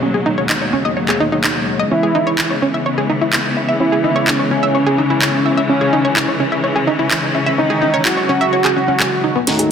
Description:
melodic techno; 127 BPM; 4/4; straight; C# minor; A4 = 441 Hz
rich studio string section; sustained chords; 0.0-9.7 s; D#2 to C#4; -20 LUFS; left 2 dB
analog pluck; arpeggios; 0.0-9.7 s; B3 to E5; -18 LUFS; equal; chorus, digital delay
bowed-like drone; drone; 0.0-9.5 s; C#3 to G#3; -26 LUFS; left 2 dB; built-in reverb
house drum kit; drums; 0.5-9.7 s; handclaps, hi-hat, snare drum; -19 LUFS; equal
fat analog lead; melody; 1.9-9.7 s; C#4 to F#4; -18 LUFS; right 1 dB; chorus, phaser, vintage 12-bit sampler grit, digital delay
analog synth brass; stabs; 9.5-9.7 s; D#3 to F#4; -19 LUFS; equal; chorus
riser; sound effects; 9.5-9.7 s; barely audible
moderate scoring stage reverb, RT60 2.1 s; dense, heavily limited modern master; -13 LUFS; side -7 dB against mid
0.0-9.5 A section
drum fill 9.5
0.0 D#m; 1.9 C#m7

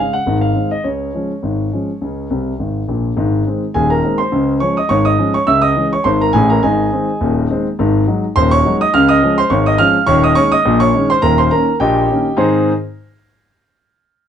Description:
ragtime piano; 104 BPM; 2/4; swing 54% on 16ths; Db major, Ab major from 3.2 s; A4 = 440 Hz
warm concert grand piano; solo; 0.0-12.7 s; Eb1 to F6; -12 LUFS; equal
light reverb; dark, warm production; -12 LUFS; side -8 dB against mid
0.0-3.2 A section; 3.2-12.4 B section; 12.4-13.5 C section
grand piano fill 2.3-3.2
0.3 Ab; 0.8 Db; 3.2 Ab; 4.3 Db; 5.5 Dbm; 6.6 Ab; 7.8 Ab7; 8.9 Db; 10.1 Eb7sus4; 11.2 Eb7; 12.4 Ab

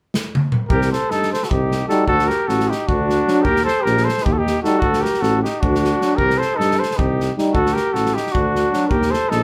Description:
balkan folk, Balkan brass band; 307 BPM (eighths); 7/8; straight; C dorian sharp4; A4 = 439 Hz
natural country drum kit; percussion; 0.1-9.4 s; kick drum, snare drum, toms; -26 LUFS; equal
mellow trumpet; melody; 0.7-9.4 s; F#4 to C5; -23 LUFS; equal
mellow trumpet; second line; 0.7-9.4 s; D4 to A4; -25 LUFS; equal
warm tuba; bass; 0.7-9.4 s; A1 to G2; -24 LUFS; equal
clear euphonium; accompaniment; 1.9-8.9 s; D4 to Eb4; -24 LUFS; equal
clear trombone; accompaniment; 1.9-8.9 s; F#3 to G3; -26 LUFS; equal
moderate studio reverb, RT60 0.6 s; band playing live in one room; -18 LUFS; mono
0.7-9.4 A section
drum fill 0.1-0.7
0.0 N.C.; 0.7 Cm; 2.1 D; 3.4 Eb; 4.8 D; 6.2 Cm; 7.5 D; 8.9 Eb

